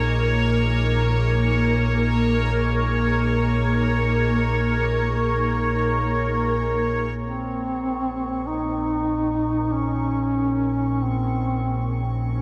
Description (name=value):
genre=dark ambient drone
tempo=free time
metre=none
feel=none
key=unclear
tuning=A4 = 439 Hz
part: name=granular cloud pad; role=sustained chords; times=0.0-12.4 s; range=Bb3 to Bb4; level=-28 LUFS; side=equal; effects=built-in reverb
part: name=deep rumbling drone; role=drone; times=0.0-12.4 s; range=Bb1 to Bb2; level=-26 LUFS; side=equal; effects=built-in reverb
part: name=bubbling stepped-filter texture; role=texture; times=0.0-12.4 s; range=Db5 to Db6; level=-31 LUFS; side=equal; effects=chorus, built-in reverb
part: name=mellow duduk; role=melody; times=7.2-12.4 s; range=C4 to Eb4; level=-26 LUFS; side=equal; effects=delay
room=wet huge ambient reverb, RT60 8.2 s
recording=cassette tape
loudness=-22 LUFS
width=mono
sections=0.0-7.2 A section; 7.2-12.4 B section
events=fade-in on ambient pad 7.2-12.4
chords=0.0 Eb5